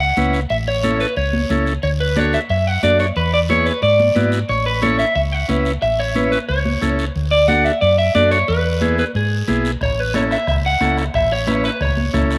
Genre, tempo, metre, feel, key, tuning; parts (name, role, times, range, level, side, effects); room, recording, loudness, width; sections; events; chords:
latin, cumbia; 180 BPM; 4/4; straight; A major; A4 = 442 Hz
electric guitar at the edge of break-up; melody; 0.0-12.3 s; G#4 to F#5; -20 LUFS; equal; spring reverb
hollow-body short-scale fingered electric bass; bass; 0.0-12.4 s; A1 to G#2; -23 LUFS; equal
combo organ; accompaniment; 0.2-12.4 s; B3 to B4; -22 LUFS; equal; cassette tape
congas; percussion; 0.2-12.3 s; -26 LUFS; equal
guiro; percussion; 0.2-12.4 s; -36 LUFS; equal
bombo; percussion; 9.8-12.4 s; -28 LUFS; equal
moderate booth ambience, RT60 0.2 s; home recording on cassette; -17 LUFS; mono
0.0-12.4 A section
0.0 A; 1.8 D; 3.2 E7; 4.5 A; 7.2 D; 8.5 E; 9.8 A